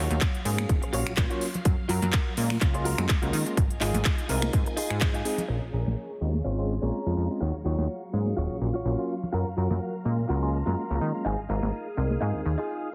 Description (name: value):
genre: filtered disco house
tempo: 125 BPM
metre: 4/4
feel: swing 55% on 16ths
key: Bb minor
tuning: A4 = 440 Hz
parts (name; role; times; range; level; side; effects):
- phased string machine; sustained chords; 0.0-12.9 s; Gb3 to Eb6; -42 LUFS; equal; ensemble chorus, phaser, sidechain pumping, low-pass filter
- direct-recorded clean electric guitar; riff; 0.0-12.9 s; Db4 to Db5; -36 LUFS; equal; phaser, sidechain pumping, low-pass filter
- plucky analog bass; bass; 0.0-12.6 s; Eb1 to Eb3; -30 LUFS; equal; sidechain pumping, low-pass filter
- house drum kit; drums; 0.1-5.5 s; finger snaps, handclaps, hi-hat; -34 LUFS; equal; none
- tambourine and congas; percussion; 0.1-12.8 s; none; -38 LUFS; equal; sidechain pumping on perc, low-pass filter on perc
- electronic kick drum; drums; 0.2-5.1 s; none; -28 LUFS; equal; none
- bright tine electric piano; accompaniment; 0.5-12.4 s; Gb3 to Bb4; -36 LUFS; equal; phaser, sidechain pumping, low-pass filter
- breathy mellow jazz flute; melody; 6.3-7.3, 10.2-11.2 s; F5 to Bb5; -44 LUFS; equal; sidechain pumping, low-pass filter, dub echo
room: light reverb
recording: heavily compressed radio sound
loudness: -27 LUFS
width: mono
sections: 0.0-5.5 A section; 5.5-12.9 B section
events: filter sweep 5.5-12.9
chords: 0.0 Ebm9; 1.7 Gbmaj7; 3.6 Fm7/Ab; 5.5 Bbm7; 7.4 Ebm9; 9.3 Gbmaj7; 11.3 Fm7/Ab